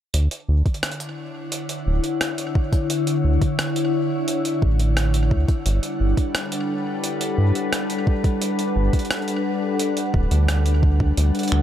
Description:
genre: IDM.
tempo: 87 BPM.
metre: 4/4.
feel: straight.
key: D major.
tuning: A4 = 440 Hz.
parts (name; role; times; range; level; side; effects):
glassy FM pad; sustained chords; 0.8-11.6 s; D3 to F#5; -23 LUFS; left 2 dB; ensemble chorus, built-in reverb.
round analog bass; bass; 0.1-11.6 s; D1 to G2; -18 LUFS; equal; none.
jungle sampler-style drum kit; drums; 0.1-11.6 s; finger snaps, hi-hat, rim click; -28 LUFS; right 1 dB; none.
electronic kick drum; drums; 0.7-11.1 s; none; -20 LUFS; equal; overdrive.
room: little or no reverb.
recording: none.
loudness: -19 LUFS.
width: side -11 dB against mid.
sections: 0.1-11.6 A section.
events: none.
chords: 0.1 Dmaj9; 5.7 Gmaj7.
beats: | 0.14 0.83 1.52 2.21 | 2.90 3.59 4.28 4.97 | 5.66 6.35 7.04 7.73 | 8.42 9.11 9.79 10.48 | 11.17.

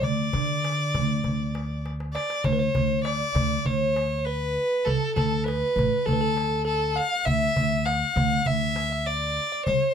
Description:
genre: Arabic maqam ensemble.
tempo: 100 BPM.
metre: 4/4.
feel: straight.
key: D maqam rast.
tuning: A4 = 440 Hz.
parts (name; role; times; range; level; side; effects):
clear violin; melody; 0.0-9.9 s; A4 to F5+44c; -26 LUFS; left 2 dB; none.
bell-like tine electric piano; second line; 0.0-9.9 s; A4 to F#5-50c; -32 LUFS; right 2 dB; none.
upright bass; bass; 0.0-9.8 s; A1 to D3; -28 LUFS; equal; none.
darbuka; percussion; 0.0-9.8 s; none; -29 LUFS; right 2 dB; none.
room: light reverb.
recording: close, detailed microphones.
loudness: -22 LUFS.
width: side -7 dB against mid.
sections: 0.0-2.5 A section; 2.5-9.9 B section.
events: drum fill 1.8-2.5.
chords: none.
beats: | 0.04 0.64 1.25 1.85 | 2.45 3.05 3.66 4.26 | 4.86 5.46 6.06 6.66 | 7.26 7.87 8.47 9.07 | 9.67.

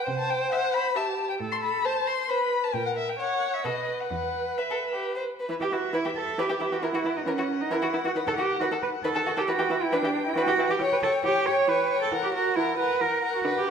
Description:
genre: quick classical-period movement for string quartet.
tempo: 135 BPM.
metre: 3/4.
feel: straight.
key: E minor.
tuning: A4 = 440 Hz.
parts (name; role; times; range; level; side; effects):
warm violin; melody; 0.0-13.7 s; D#5 to C6; -30 LUFS; left 6 dB; none.
rich viola; accompaniment; 0.0-13.7 s; D3 to C#5; -31 LUFS; right 2 dB; none.
rich cello; bass; 0.1-13.7 s; E2 to C#5; -27 LUFS; right 5 dB; none.
warm violin; second line; 0.5-13.7 s; E4 to E5; -30 LUFS; left 2 dB; none.
room: wet recital hall reverb, RT60 1.7 s.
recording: minimal, uncompressed stereo recording.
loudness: -24 LUFS.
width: side -7 dB against mid.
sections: 0.0-5.5 A section; 5.5-13.7 A section.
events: none.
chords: 0.1 C5; 1.4 Am; 2.7 A#dim7; 3.6 B; 4.1 E5; 5.5 Em; 6.8 F#7(no3)/E; 8.2 B7/D# (rootless); 9.5 Em; 10.8 C#m7b5/E; 12.1 F#7/E.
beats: | 0.07 0.51 0.96 | 1.41 1.85 2.29 | 2.74 3.20 3.65 | 4.11 4.58 5.04 | 5.50 5.94 6.39 | 6.83 7.28 7.72 | 8.16 8.61 9.05 | 9.49 9.93 10.37 | 10.80 11.24 11.68 | 12.12 12.57 13.01 | 13.46.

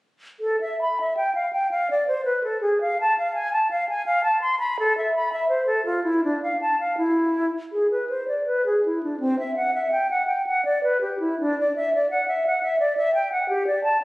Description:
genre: classical, baroque-style fantasia for unaccompanied flute.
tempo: 74-88 BPM.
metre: 3/4.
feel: rubato.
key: A minor.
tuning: A4 = 440 Hz.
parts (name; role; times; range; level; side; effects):
concert flute; solo; 0.4-14.0 s; C4 to C6; -21 LUFS; equal; none.
room: wet recital hall reverb, RT60 1.5 s.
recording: recorded on a phone in the room, studio reverb.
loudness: -21 LUFS.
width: side -20 dB against mid.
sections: 0.4-14.0 A section.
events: none.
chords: none.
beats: | 0.41 1.16 1.87 | 2.61 3.33 4.04 | 4.77 5.49 6.22 | 6.96 7.71 8.46 | 9.21 9.94 10.65 | 11.40 12.11 12.79 | 13.49.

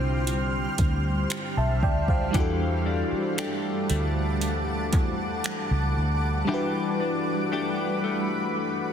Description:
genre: contemporary R&B.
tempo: 58 BPM.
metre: 4/4.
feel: straight.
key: unclear.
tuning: A4 = 441 Hz.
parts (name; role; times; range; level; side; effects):
FM electric piano with soft pad layer; accompaniment; 0.0-8.9 s; G3 to A5; -29 LUFS; equal; chorus.
granular cloud pad; sustained chords; 0.0-8.9 s; G3 to F6; -30 LUFS; right 1 dB; built-in reverb.
direct-recorded clean electric guitar; arpeggios; 0.0-8.9 s; D3 to G4; -33 LUFS; left 6 dB; analog chorus, ping-pong delay.
vintage muted fingered electric bass; bass; 0.0-6.4 s; B1 to E2; -27 LUFS; equal; none.
smooth R&B drum kit; drums; 0.3-5.7 s; finger snaps, hi-hat, kick drum; -27 LUFS; equal; soft clipping on snare.
room: light reverb.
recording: dense, heavily limited modern master.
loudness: -23 LUFS.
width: side -8 dB against mid.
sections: 0.0-8.9 A section.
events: none.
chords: 0.0 Dm11; 2.3 Em11.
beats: 0.27 1.31 | 2.34 3.38 4.41 5.44 | 6.48 7.51 8.55.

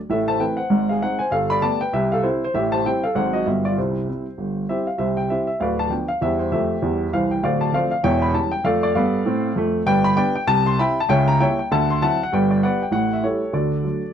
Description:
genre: jazz, stride piano.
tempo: 196 BPM.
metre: 4/4.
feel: swing 58% on 8ths.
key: C major, G major from 9.9 s.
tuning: A4 = 441 Hz.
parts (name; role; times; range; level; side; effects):
warm upright piano; solo; 0.1-14.1 s; D1 to C6; -18 LUFS; equal; none.
room: moderate studio reverb, RT60 0.7 s.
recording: dark, warm production.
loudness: -18 LUFS.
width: side -8 dB against mid.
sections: 0.0-5.0 A section; 5.0-14.1 B section.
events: none.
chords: 0.1 Am; 0.7 Ab; 1.3 Gadd9; 1.9 C; 2.5 Am7; 3.2 Ab7; 3.5 G7; 3.8 C; 5.6 Bdim/D; 6.2 C/E; 7.4 Dm7; 8.0 C#dim/E; 8.6 Dm/F; 9.9 G; 10.5 C; 11.1 C#dim7; 11.7 D9; 12.3 G; 12.9 A7; 13.5 D.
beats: | 0.10 0.41 0.71 1.02 | 1.32 1.63 1.94 2.24 | 2.55 2.85 3.16 3.46 | 3.77 4.07 4.38 4.68 | 4.99 5.29 5.60 5.90 | 6.21 6.51 6.82 7.12 | 7.43 7.73 8.04 8.34 | 8.65 8.95 9.26 9.56 | 9.87 10.17 10.48 10.79 | 11.09 11.40 11.70 12.01 | 12.31 12.62 12.92 13.23 | 13.54 13.84.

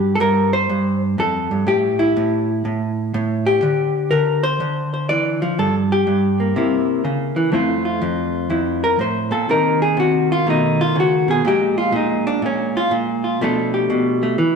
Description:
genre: solo jazz.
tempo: 123 BPM.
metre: 4/4.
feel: swing 66% on 8ths.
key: F major.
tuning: A4 = 439 Hz.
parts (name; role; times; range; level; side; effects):
vintage hollow-body jazz guitar; solo; 0.0-14.6 s; F2 to D5; -16 LUFS; equal; none.
room: wet stone room reverb, RT60 1.3 s.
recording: band playing live in one room.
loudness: -16 LUFS.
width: side -5 dB against mid.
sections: 0.0-7.5 A section; 7.5-14.6 B section.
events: hollow-body jazz guitar solo 7.5-14.6.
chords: 0.0 Gm9; 1.7 N.C.; 3.6 D7sus2; 5.6 Gm; 6.5 C7b9; 7.5 Fmaj7; 9.5 Cm7b5; 10.5 B9; 11.4 Bb5; 13.4 Bm7b5.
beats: 0.20 0.68 1.17 | 1.66 2.15 2.64 3.12 | 3.61 4.10 4.59 5.08 | 5.57 6.05 6.54 7.03 | 7.52 8.01 8.49 8.98 | 9.47 9.96 10.45 10.94 | 11.43 11.92 12.41 12.90 | 13.39 13.88 14.37.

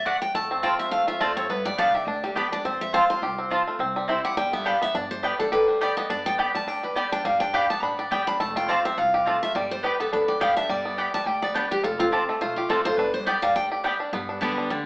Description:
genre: bluegrass.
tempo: 209 BPM.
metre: 4/4.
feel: swing 55% on 8ths.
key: G mixolydian.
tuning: A4 = 439 Hz.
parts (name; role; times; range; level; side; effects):
picked steel-string acoustic guitar; accompaniment; 0.0-14.9 s; G2 to B5; -24 LUFS; equal; none.
upright bass; bass; 0.0-14.9 s; F1 to G2; -40 LUFS; equal; none.
mandolin; stabs; 0.1-14.5 s; A3 to A5; -27 LUFS; equal; none.
bluegrass banjo; melody; 0.3-14.9 s; G3 to G4; -27 LUFS; equal; none.
room: wet studio reverb, RT60 0.9 s.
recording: band playing live in one room, AM radio sound.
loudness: -22 LUFS.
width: side -25 dB against mid.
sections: 0.0-5.0 A section; 5.0-14.1 A section.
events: steel-string acoustic guitar solo 0.0-14.1.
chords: 0.3 F; 1.5 Gadd9; 2.6 F; 3.8 C; 4.4 G; 8.4 F; 9.5 G; 11.8 F; 13.0 G; 14.1 Gadd9.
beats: 0.06 | 0.35 0.63 0.92 1.21 | 1.50 1.79 2.07 2.36 | 2.65 2.94 3.23 3.51 | 3.80 4.09 4.38 4.66 | 4.95 5.24 5.53 5.81 | 6.10 6.39 6.68 6.96 | 7.25 7.54 7.83 8.11 | 8.40 8.69 8.97 9.26 | 9.55 9.83 10.12 10.41 | 10.69 10.98 11.27 11.55 | 11.84 12.13 12.41 12.70 | 12.98 13.27 13.56 13.84 | 14.13 14.42 14.70.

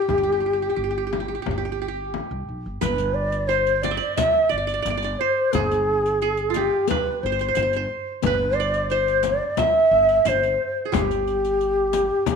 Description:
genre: Turkish makam ensemble.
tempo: 89 BPM.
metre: 4/4.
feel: straight.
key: G makam hicaz.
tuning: A4 = 442 Hz.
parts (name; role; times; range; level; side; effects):
breathy mellow ney; melody; 0.0-12.4 s; G4 to E5-38c; -21 LUFS; equal; slapback echo.
qanun; second line; 0.0-12.4 s; F4 to E5-40c; -28 LUFS; right 10 dB; none.
upright bass; bass; 0.1-12.1 s; G1 to C2; -30 LUFS; equal; none.
frame drum; percussion; 0.1-12.4 s; none; -28 LUFS; left 8 dB; none.
riq; percussion; 2.8-12.4 s; none; -33 LUFS; left 13 dB; none.
room: moderate echo chamber reverb, RT60 1.5 s, studio reverb.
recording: 1960s-style stereo with parts hard left and right.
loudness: -19 LUFS.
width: side -6 dB against mid.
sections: 0.0-2.8 A section; 2.8-12.4 B section.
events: none.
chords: none.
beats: | 0.11 0.79 1.47 2.15 | 2.83 3.50 4.18 4.86 | 5.54 6.21 6.88 7.56 | 8.23 8.91 9.58 10.26 | 10.93 11.60 12.28.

